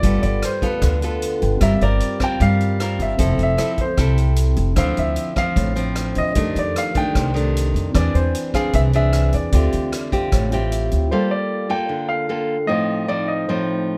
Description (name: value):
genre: bossa nova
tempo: 152 BPM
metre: 4/4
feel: straight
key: D minor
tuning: A4 = 440 Hz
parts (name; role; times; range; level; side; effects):
- warm grand piano; melody; 0.0-13.9 s; B4 to G5; -26 LUFS; equal; none
- mellow tine electric piano; accompaniment; 0.0-14.0 s; A3 to E6; -32 LUFS; equal; none
- nylon-string guitar; accompaniment; 0.0-14.0 s; F2 to Bb4; -25 LUFS; equal; none
- upright bass; bass; 0.0-11.1 s; F1 to G2; -22 LUFS; equal; none
- swinging big-band drum kit; drums; 0.0-11.0 s; hi-hat, kick drum, rim click; -28 LUFS; equal; none
room: little or no reverb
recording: close, detailed microphones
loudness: -20 LUFS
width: mono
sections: 0.0-11.1 A section; 11.1-14.0 B section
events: tine electric piano fill 10.3-11.1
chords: 0.0 G9; 1.6 C7sus4/G; 3.2 Fmaj7; 4.8 Dm9; 6.4 F13; 7.9 Eaug7; 9.5 Dm11; 11.1 Gm9; 12.7 F7/A